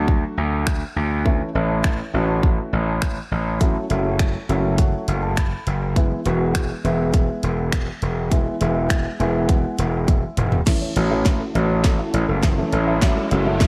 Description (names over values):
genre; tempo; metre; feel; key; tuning
dance-pop; 102 BPM; 4/4; straight; A major; A4 = 442 Hz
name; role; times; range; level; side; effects
dark concert grand piano; accompaniment; 0.0-13.7 s; E3 to B5; -27 LUFS; equal; sidechain pumping, low-pass filter
gritty slap bass; bass; 0.0-13.7 s; E1 to D2; -24 LUFS; equal; overdrive, sidechain pumping
pop drum kit; drums; 0.1-13.7 s; crash cymbal, finger snaps, hi-hat, kick drum, snare drum, toms; -23 LUFS; equal; none
glassy FM pad; sustained chords; 11.1-13.7 s; F#3 to A4; -31 LUFS; equal; none
mallet-like synth pluck; arpeggios; 10.7-13.7 s; A4 to E5; -34 LUFS; equal; none
riser; sound effects; 12.0-13.7 s; none; -34 LUFS; equal; none
room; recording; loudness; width
light reverb, digital ambience; none; -21 LUFS; mono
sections
0.0-10.7 A section; 10.7-13.7 B section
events
grand piano fill 4.2-6.0, 8.9-10.7; drum fill 10.1-10.7, 10.7-13.7; build-up 10.7-13.7; filter sweep 10.7-13.7; riser 12.0-13.7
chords
0.0 D; 1.3 A; 3.6 F#m7; 6.0 E; 10.7 A